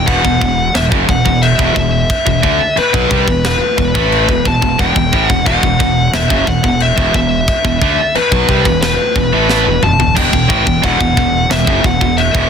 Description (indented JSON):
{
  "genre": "heavy metal",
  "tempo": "89 BPM",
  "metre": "4/4",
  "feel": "straight",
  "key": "E minor",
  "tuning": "A4 = 436 Hz",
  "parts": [
    { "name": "high-gain lead guitar", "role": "melody", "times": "0.0-12.5 s", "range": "B4 to A5", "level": "-16 LUFS", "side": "left 2 dB", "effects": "distortion" },
    { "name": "tight distorted guitar", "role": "riff", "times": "0.0-12.5 s", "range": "E2 to A3", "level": "-15 LUFS", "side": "right 1 dB", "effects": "distortion" },
    { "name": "fuzz fingered electric bass", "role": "bass", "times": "0.0-12.5 s", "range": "E1 to D2", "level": "-19 LUFS", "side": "equal", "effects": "overdrive" },
    { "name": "tight metal drum kit", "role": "drums", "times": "0.1-12.5 s", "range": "china cymbal, crash cymbal, kick drum, snare drum, toms", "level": "-16 LUFS", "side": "equal", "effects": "soft clipping on snare" }
  ],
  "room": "little or no reverb",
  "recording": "dense, heavily limited modern master",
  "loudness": "-10 LUFS",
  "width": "side -7 dB against mid",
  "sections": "0.0-12.5 A section",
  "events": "drum fill 9.5-10.2",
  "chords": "0.0 E5",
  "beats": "0.07 0.75 1.42 | 2.09 2.77 3.44 4.11 | 4.79 5.46 6.13 6.80 | 7.48 8.15 8.82 9.49 | 10.16 10.84 11.51 12.18"
}